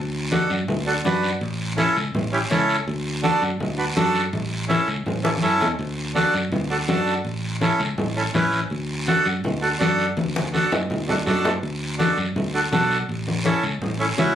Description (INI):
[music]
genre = latin, cumbia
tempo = 164 BPM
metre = 4/4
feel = straight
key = D major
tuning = A4 = 442 Hz
[part]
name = fingered electric bass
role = bass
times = 0.0-14.3 s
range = A1 to F#2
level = -26 LUFS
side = right 1 dB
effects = none
[part]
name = accordion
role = accompaniment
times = 0.3-14.3 s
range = C#4 to B4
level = -21 LUFS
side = right 2 dB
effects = none
[part]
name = congas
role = percussion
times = 0.3-14.3 s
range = none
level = -26 LUFS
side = left 4 dB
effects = none
[part]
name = guiro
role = percussion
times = 0.3-14.3 s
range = none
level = -31 LUFS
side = right 1 dB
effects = none
[sound]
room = light reverb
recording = recorded on a phone in the room, studio ambience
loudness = -20 LUFS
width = side -10 dB against mid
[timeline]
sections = 0.0-11.6 A section; 11.6-14.3 A section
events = drum fill 5.2-5.8, 10.2-11.6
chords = 0.0 D; 1.4 A; 2.9 D; 4.3 A; 5.8 D; 7.3 A; 8.7 D; 13.1 A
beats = 0.32 0.68 1.05 | 1.41 1.78 2.14 2.51 | 2.87 3.24 3.60 3.97 | 4.33 4.70 5.06 5.43 | 5.79 6.16 6.52 6.89 | 7.25 7.62 7.98 8.35 | 8.71 9.08 9.44 9.80 | 10.17 10.54 10.90 11.26 | 11.63 11.99 12.36 12.72 | 13.09 13.45 13.82 14.18